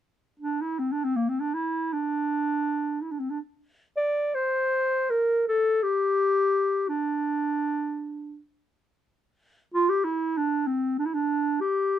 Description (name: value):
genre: turkish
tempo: free time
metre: none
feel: none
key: D makam ussak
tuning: A4 = 441 Hz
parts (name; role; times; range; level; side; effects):
- mellow clarinet; melody; 0.4-12.0 s; Bb3 to D5; -24 LUFS; equal; none
room: light reverb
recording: minimal, uncompressed stereo recording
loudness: -24 LUFS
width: side -10 dB against mid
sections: 0.1-8.8 A section; 8.8-12.0 B section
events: none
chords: none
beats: free time